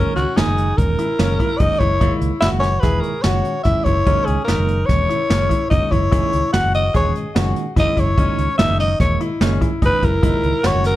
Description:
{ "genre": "progressive instrumental, band music in an uneven meter", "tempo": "146 BPM", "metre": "5/4", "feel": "straight", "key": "F# mixolydian", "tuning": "A4 = 440 Hz", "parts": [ { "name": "growling alto saxophone", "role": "melody", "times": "0.0-11.0 s", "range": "F#4 to F#5", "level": "-20 LUFS", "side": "left 1 dB", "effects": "none" }, { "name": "bell-like tine electric piano", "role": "accompaniment", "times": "0.0-10.9 s", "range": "A#2 to E4", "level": "-25 LUFS", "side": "right 2 dB", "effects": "medium stereo tremolo" }, { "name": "clear concert grand piano", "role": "arpeggios", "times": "0.0-11.0 s", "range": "C#4 to G#4", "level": "-25 LUFS", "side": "left 3 dB", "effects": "digital delay" }, { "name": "fingered electric bass", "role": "bass", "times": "0.0-11.0 s", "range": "E1 to C#2", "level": "-20 LUFS", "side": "equal", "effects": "none" }, { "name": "jazz brush drum kit", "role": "drums", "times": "0.2-10.9 s", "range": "hi-hat, kick drum, snare drum", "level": "-20 LUFS", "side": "equal", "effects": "none" } ], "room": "light reverb", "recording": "none", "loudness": "-15 LUFS", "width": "side -15 dB against mid", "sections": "0.0-11.0 A section", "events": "none", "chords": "0.0 F#7", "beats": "0.36 0.78 1.19 1.60 | 2.01 2.42 2.83 3.25 3.66 | 4.07 4.48 4.89 5.30 5.71 | 6.12 6.53 6.94 7.35 7.76 | 8.17 8.58 8.99 9.40 9.81 | 10.22 10.63" }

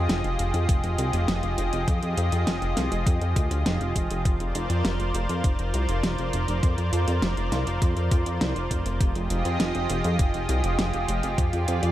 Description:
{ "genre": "synthwave", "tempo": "101 BPM", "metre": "4/4", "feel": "straight", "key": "F dorian", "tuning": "A4 = 440 Hz", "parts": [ { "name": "lush unison pad", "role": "sustained chords", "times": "0.0-11.9 s", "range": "F3 to Eb5", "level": "-28 LUFS", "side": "right 1 dB", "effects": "chorus, vintage 12-bit sampler grit" }, { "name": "chorused synth bass", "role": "bass", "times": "0.0-11.9 s", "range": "F1 to F2", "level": "-26 LUFS", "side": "equal", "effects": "sidechain pumping" }, { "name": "pop drum kit", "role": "drums", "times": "0.1-11.9 s", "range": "hi-hat, snare drum", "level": "-30 LUFS", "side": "equal", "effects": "overdrive" }, { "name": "electronic kick drum", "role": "drums", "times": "0.7-11.5 s", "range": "none", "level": "-23 LUFS", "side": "equal", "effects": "none" } ], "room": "little or no reverb", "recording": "none", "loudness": "-22 LUFS", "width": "side -13 dB against mid", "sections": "0.0-11.9 A section", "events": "none", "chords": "0.0 Fm7; 4.3 Bbadd9/F; 9.0 Fm7", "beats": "0.10 0.69 1.28 | 1.88 2.47 3.07 3.66 | 4.25 4.85 5.44 6.04 | 6.63 7.22 7.82 8.41 | 9.01 9.60 10.19 10.79 | 11.38" }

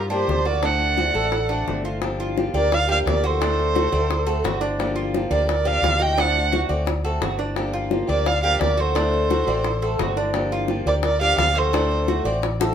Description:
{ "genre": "latin, Cuban son and guajira", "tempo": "173 BPM", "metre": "4/4", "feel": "straight", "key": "G minor", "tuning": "A4 = 441 Hz", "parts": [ { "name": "warm violin", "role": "melody", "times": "0.0-12.3 s", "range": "C5 to G5", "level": "-23 LUFS", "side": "right 4 dB", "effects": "none" }, { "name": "hollow concert flute", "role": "second line", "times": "0.0-12.3 s", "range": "G4 to Eb5", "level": "-28 LUFS", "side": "left 5 dB", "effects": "none" }, { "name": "Cuban tres", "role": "arpeggios", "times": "0.0-12.7 s", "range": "D4 to D5", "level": "-27 LUFS", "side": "right 2 dB", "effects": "none" }, { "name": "fretless electric bass", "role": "bass", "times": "0.0-12.7 s", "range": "G1 to G2", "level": "-25 LUFS", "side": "equal", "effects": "none" }, { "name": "picked old ladder-braced acoustic guitar", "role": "accompaniment", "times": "0.1-12.7 s", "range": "D3 to G4", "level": "-29 LUFS", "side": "left 3 dB", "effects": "none" }, { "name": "bongos", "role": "percussion", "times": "0.3-12.7 s", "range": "none", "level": "-27 LUFS", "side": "left 4 dB", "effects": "none" } ], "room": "moderate studio reverb, RT60 0.8 s", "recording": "minimal, uncompressed stereo recording", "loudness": "-19 LUFS", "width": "side -8 dB against mid", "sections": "0.0-2.0 A section; 2.0-12.7 B section", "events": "none", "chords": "0.0 Gm7; 0.6 D7; 2.0 Gm7; 3.4 D7; 4.8 Gm7; 6.2 D7; 7.6 Gm7; 9.0 D7; 10.3 Gm7; 11.7 D7", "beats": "0.28 | 0.63 0.98 1.32 1.67 | 2.02 2.37 2.71 3.06 | 3.40 3.75 4.10 4.44 | 4.79 5.14 5.48 5.83 | 6.18 6.52 6.87 7.22 | 7.56 7.91 8.26 8.61 | 8.95 9.30 9.65 10.00 | 10.34 10.69 11.04 11.39 | 11.73 12.08 12.43" }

